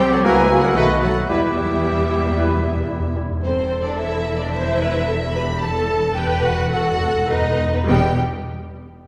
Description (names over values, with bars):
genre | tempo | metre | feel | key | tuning
classical, dramatic, fast romantic movement for symphony orchestra | 110 BPM | 4/4 | rubato | unclear | A4 = 440 Hz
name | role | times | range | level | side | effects
warm symphonic violin section | melody | 0.0-8.2 s | G4 to B5 | -28 LUFS | equal | none
clear clarinet | second line | 0.0-3.3 s | E4 to G4 | -31 LUFS | equal | none
hollow concert flute | second line | 0.0-3.1 s | F#4 to C5 | -26 LUFS | equal | none
rich symphonic violin section | second line | 0.0-8.2 s | B3 to G5 | -30 LUFS | equal | none
warm oboe | second line | 0.0-3.2 s | E4 to G4 | -29 LUFS | equal | none
mellow bassoon | accompaniment | 0.0-3.3 s | G3 to C4 | -29 LUFS | equal | none
warm symphonic viola section | accompaniment | 0.0-8.2 s | F#3 to C5 | -26 LUFS | equal | none
rich symphonic cello section | bass | 0.0-8.2 s | E2 to G#3 | -29 LUFS | equal | none
warm symphonic double bass section | bass | 0.0-8.2 s | E1 to E2 | -29 LUFS | equal | none
mellow French horn section | sustained chords | 0.2-2.5 s | E3 to F#4 | -28 LUFS | equal | none
clear trumpet section | stabs | 0.2-2.6 s | A#4 to B4 | -30 LUFS | equal | none
timpani | percussion | 1.3-8.1 s | E2 | -28 LUFS | equal | none
room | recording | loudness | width
wet scoring stage reverb, RT60 2.0 s | heard from further back in the room | -19 LUFS | mono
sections
0.0-3.4 A section; 3.4-7.9 B section; 7.9-9.1 C section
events
timpani fill 1.3-3.4, 5.6-7.9; slowing down 2.4-7.9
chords
0.3 F#7/C#; 0.8 B7; 1.3 Em; 3.4 A5/E; 7.9 Em